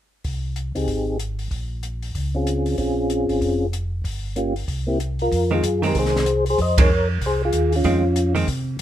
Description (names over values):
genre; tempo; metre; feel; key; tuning
soul jazz organ trio; 189 BPM; 4/4; swing 61% on 8ths; F minor; A4 = 441 Hz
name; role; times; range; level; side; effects
mellow tonewheel organ; bass; 0.2-8.8 s; F1 to C3; -24 LUFS; equal; slow rotary speaker
compact cocktail drum kit; drums; 0.2-8.8 s; hi-hat, kick drum, ride cymbal, snare drum; -25 LUFS; equal; none
percussive tonewheel organ; melody; 0.8-8.3 s; Bb3 to Eb5; -21 LUFS; left 1 dB; slow rotary speaker, chorus vibrato
hollow-body jazz guitar; accompaniment; 5.5-8.5 s; Eb3 to C4; -24 LUFS; right 4 dB; none
room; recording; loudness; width
light reverb; minimal, uncompressed stereo recording; -19 LUFS; side -11 dB against mid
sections
0.2-5.3 A section; 5.3-8.8 B section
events
band accent 6.7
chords
0.2 Abmaj7; 1.5 Bbm7; 4.0 Gm7b5; 4.7 C7(no3); 5.3 Fm7